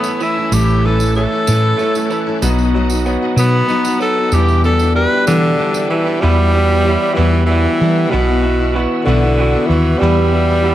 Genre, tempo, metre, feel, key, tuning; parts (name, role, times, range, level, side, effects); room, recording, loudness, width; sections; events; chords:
folk rock and heartland rock; 63 BPM (dotted quarters); 6/8; straight; E dorian; A4 = 440 Hz
clear tenor saxophone; melody; 0.0-10.7 s; B2 to B4; -17 LUFS; equal; slapback echo
clear concert grand piano; accompaniment; 0.0-10.7 s; B3 to D5; -26 LUFS; right 4 dB
picked steel-string acoustic guitar; accompaniment; 0.0-10.7 s; E2 to F#4; -23 LUFS; left 6 dB
bright tonewheel organ; sustained chords; 0.0-10.7 s; B4 to F#6; -29 LUFS; left 1 dB; chorus vibrato, fast rotary speaker
electric guitar through a small old amp; riff; 0.0-10.7 s; E2 to F#4; -19 LUFS; equal
tambourine; percussion; 0.0-5.9 s; -28 LUFS; right 7 dB
hollow-body short-scale fingered electric bass; bass; 0.5-10.7 s; A1 to E3; -15 LUFS; equal
light reverb, studio ambience; dark, warm production; -12 LUFS; side -13 dB against mid
0.0-6.2 A section; 6.2-10.7 B section
tenor saxophone solo 0.0-6.2
0.0 A; 2.4 B; 4.3 Em7; 6.2 Em; 8.1 Bsus4; 10.0 Em